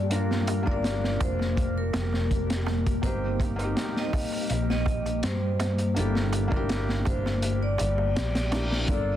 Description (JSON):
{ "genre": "trip hop", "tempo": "82 BPM", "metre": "4/4", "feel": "straight", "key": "G minor", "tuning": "A4 = 436 Hz", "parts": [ { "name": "vibraphone with medium hard mallets", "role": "melody", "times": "0.0-9.2 s", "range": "A4 to Eb5", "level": "-33 LUFS", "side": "moving between left 6 dB and right 3 dB", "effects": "auto-pan, tape echo" }, { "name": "felt-muted upright piano", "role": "accompaniment", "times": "0.0-9.2 s", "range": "Bb3 to Bb4", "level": "-34 LUFS", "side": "equal", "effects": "harmonic tremolo, vintage 12-bit sampler grit, tape echo" }, { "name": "deep dark ambient pad", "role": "sustained chords", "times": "0.0-9.2 s", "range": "F3 to G4", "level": "-34 LUFS", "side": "left 3 dB", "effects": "chorus, built-in reverb" }, { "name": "hollow-body short-scale fingered electric bass", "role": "bass", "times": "0.0-9.2 s", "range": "F1 to G2", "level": "-28 LUFS", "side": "equal", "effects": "tube saturation" }, { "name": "flickering grainy texture", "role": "texture", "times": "0.0-8.9 s", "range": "G3 to G4", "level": "-41 LUFS", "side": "left 1 dB", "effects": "built-in reverb" }, { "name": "crunchy breakbeat drum kit", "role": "drums", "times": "0.1-9.1 s", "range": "hi-hat, kick drum, snare drum", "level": "-30 LUFS", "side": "equal", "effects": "vintage 12-bit sampler grit" }, { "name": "darbuka", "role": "percussion", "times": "0.1-8.9 s", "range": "none", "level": "-40 LUFS", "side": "right 4 dB", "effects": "none" }, { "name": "reverse cymbal", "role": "sound effects", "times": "7.9-8.9 s", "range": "none", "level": "-37 LUFS", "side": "left 1 dB", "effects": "none" } ], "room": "small room reverb", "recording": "dense, heavily limited modern master", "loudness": "-24 LUFS", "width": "side -12 dB against mid", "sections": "0.0-8.9 A section", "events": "kick drops out 7.4-8.9; reverse cymbal 7.9-8.9", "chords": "0.0 Gm9; 3.0 Eb6/G; 6.0 Gm6" }